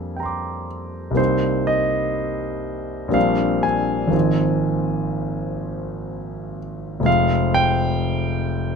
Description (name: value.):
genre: classical, impressionist solo piano.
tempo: 61 BPM.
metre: 3/4.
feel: rubato.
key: unclear.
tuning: A4 = 440 Hz.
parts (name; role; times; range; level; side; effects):
warm concert grand piano; solo; 0.0-8.8 s; F1 to D6; -19 LUFS; equal; none.
room: light reverb.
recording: none.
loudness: -19 LUFS.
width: side -5 dB against mid.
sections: 0.0-8.8 A section.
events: none.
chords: 0.0 Bb13/F; 1.2 Cm7; 3.2 Bb69; 4.1 Ab69; 7.1 Fmadd9.